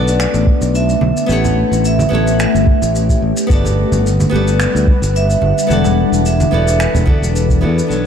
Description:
sunset chillout; 109 BPM; 4/4; swing 54% on 16ths; A4 = 441 Hz
vibraphone with hard mallets; melody; 0.0-7.3 s; B4 to F#5; -21 LUFS; right 4 dB; ping-pong delay
flamenco guitar; accompaniment; 0.0-8.1 s; B3 to D5; -20 LUFS; left 1 dB; auto-pan, ping-pong delay
ethereal airy pad; sustained chords; 0.1-8.1 s; E3 to F#5; -19 LUFS; left 3 dB; ensemble chorus, built-in reverb, phaser
modern bright fingered electric bass; bass; 0.0-8.1 s; E1 to E2; -16 LUFS; equal
shaker and finger snaps; drums; 0.1-8.0 s; -25 LUFS; equal
electronic kick drum; drums; 0.5-7.6 s; -13 LUFS; equal
congas; percussion; 1.0-7.2 s; -22 LUFS; right 2 dB
light reverb, studio ambience; dark, warm production; -11 LUFS; side -8 dB against mid
0.0-7.9 A section
0.0 Bm7; 1.3 A7; 3.5 Gmaj7; 5.7 E9sus4

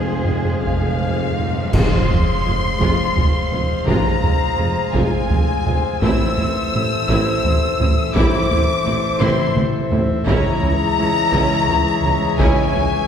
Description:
cinematic, epic orchestral film score; 56 BPM (dotted quarters); 6/8; straight; F harmonic minor; A4 = 440 Hz
warm symphonic violin section; melody; 0.0-13.1 s; C5 to E6; -24 LUFS; left 4 dB
warm symphonic violin section; second line; 0.0-13.1 s; C4 to E6; -27 LUFS; left 4 dB
rich symphonic viola section; accompaniment; 0.0-12.8 s; F3 to F4; -27 LUFS; right 2 dB
pipe organ, foundations; sustained chords; 0.0-13.1 s; Ab3 to F5; -26 LUFS; left 2 dB
warm French horn section; sustained chords; 0.0-13.1 s; E3 to C5; -26 LUFS; left 3 dB
mellow tuba; bass; 0.0-12.9 s; F1 to Db2; -25 LUFS; right 2 dB
warm symphonic cello section; bass; 0.0-12.8 s; Db2 to Ab4; -27 LUFS; right 2 dB
warm symphonic double bass section; bass; 0.0-12.8 s; F1 to F2; -27 LUFS; right 2 dB
timpani; percussion; 0.0-2.8 s; F2; -27 LUFS; equal
taiko ensemble; drums; 0.2-13.1 s; -21 LUFS; equal
clash cymbals and concert bass drum; percussion; 1.7-3.1 s; -26 LUFS; equal
wet scoring stage reverb, RT60 1.7 s; heard from further back in the room; -15 LUFS; side -8 dB against mid
0.0-1.7 A section; 1.7-13.1 B section
timpani fill 0.0-1.7; band accent 1.7-2.5; drum fill 9.2-10.3
0.0 Fm; 6.0 Am; 10.3 Dbm

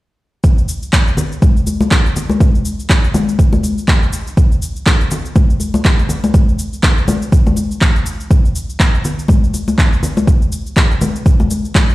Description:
house; 122 BPM; 4/4; swing 58% on 16ths
electronic cabasa and handclaps; drums; 0.4-11.9 s; -20 LUFS; equal
electronic kick drum; drums; 0.4-11.9 s; -11 LUFS; equal
congas; percussion; 1.2-11.9 s; -18 LUFS; left 2 dB
digital ambience; played on a big sound system in a bare room, large studio reverb; -12 LUFS; side -18 dB against mid
0.4-11.9 A section

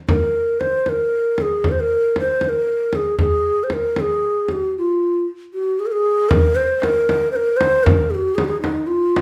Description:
Persian modal ensemble; 77 BPM (dotted quarters); 6/8; straight; A4 = 440 Hz
breathy mellow low ney; melody; 0.1-9.2 s; Eb4 to C5; -20 LUFS; equal
frame drum; percussion; 0.1-9.2 s; -24 LUFS; equal
tombak; percussion; 6.3-9.2 s; -25 LUFS; equal
wet large studio reverb, RT60 0.8 s; band playing live in one room; -19 LUFS; mono
0.0-6.3 A section; 6.3-9.2 B section

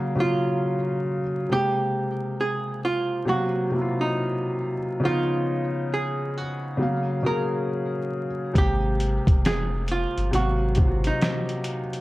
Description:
lo-fi hip hop; 68 BPM; 4/4; swing 63% on 16ths; Ab major; A4 = 440 Hz
archtop guitar, miked and amplified; melody; 0.0-12.0 s; Eb4 to Bb4; -28 LUFS; right 2 dB; low-pass filter
felt-muted upright piano; accompaniment; 0.0-12.0 s; C3 to G5; -26 LUFS; equal; low-pass filter
soft dub sub bass; bass; 8.6-11.1 s; F1 to Ab1; -26 LUFS; equal
dusty soul sampler-style drum kit; drums; 8.6-12.0 s; hi-hat, kick drum, snare drum; -23 LUFS; equal
light reverb, digital ambience; vinyl crackle; -22 LUFS; side -18 dB against mid
0.0-12.0 A section
0.0 Gbmaj7; 1.5 Abmaj9; 3.3 Ebm69/C; 5.0 Db9; 6.8 Gbmaj7; 8.6 Abmaj9; 10.3 Ab13

